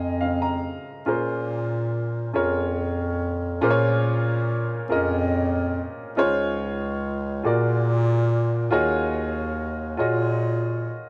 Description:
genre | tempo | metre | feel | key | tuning
slow gospel | 47 BPM (dotted quarters) | 6/8 | straight | unclear | A4 = 440 Hz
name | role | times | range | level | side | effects
warm baby grand piano | accompaniment | 0.0-11.1 s | Bb2 to Bb5 | -27 LUFS | equal | none
mellow bass clarinet | bass | 0.0-11.0 s | Db2 to Bb2 | -27 LUFS | equal | none
room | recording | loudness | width
moderate studio reverb, RT60 0.5 s | band playing live in one room | -24 LUFS | mono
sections
0.0-1.1 A section; 1.1-6.2 B section; 6.2-11.1 C section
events
grand piano solo 0.0-1.1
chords
0.0 Bbm9; 6.2 Dbmaj9; 7.4 Bb7b13; 8.7 Ebm11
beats
| 1.08 2.35 | 3.62 4.90 | 6.17 7.44 | 8.72 9.99

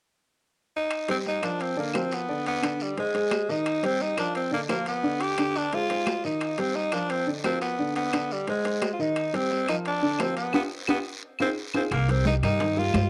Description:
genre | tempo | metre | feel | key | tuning
latin, salsa | 174 BPM | 4/4 | straight | C minor | A4 = 440 Hz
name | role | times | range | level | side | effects
raspy tenor saxophone | melody | 0.8-13.1 s | G3 to G4 | -30 LUFS | equal | plate reverb, tape echo
claves | percussion | 0.9-13.1 s | none | -41 LUFS | equal | none
guiro | percussion | 0.9-13.1 s | none | -44 LUFS | equal | none
timbales | percussion | 0.9-13.1 s | none | -35 LUFS | equal | none
warm upright piano | accompaniment | 1.1-13.1 s | D3 to Eb5 | -32 LUFS | equal | plate reverb
upright bass | bass | 11.9-13.1 s | C2 to G2 | -27 LUFS | equal | none
bongos | percussion | 11.9-13.1 s | none | -40 LUFS | equal | none
congas | percussion | 11.9-13.1 s | none | -33 LUFS | equal | none
room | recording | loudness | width
moderate studio reverb, RT60 0.5 s | dark, warm production | -27 LUFS | mono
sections
0.9-11.9 A section; 11.9-13.1 B section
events
band accent 10.5-11.9; drum fill 11.4-11.9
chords
0.0 N.C.; 0.9 C5; 1.6 Bb; 2.3 N.C.; 3.0 Ab; 3.7 Cm; 4.3 Bb; 5.0 N.C.; 5.7 Fm7; 6.4 Cm; 7.1 Bb; 7.8 N.C.; 8.5 Ab; 9.2 Cm; 9.8 Bb; 10.5 G7; 11.2 Fm7; 11.9 Cm7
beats
0.22 0.56 | 0.91 1.25 1.60 1.94 | 2.28 2.63 2.97 3.31 | 3.66 4.00 4.35 4.69 | 5.03 5.38 5.72 6.07 | 6.41 6.75 7.10 7.44 | 7.79 8.13 8.47 8.82 | 9.16 9.50 9.85 10.19 | 10.54 10.88 11.22 11.57 | 11.91 12.25 12.60 12.94

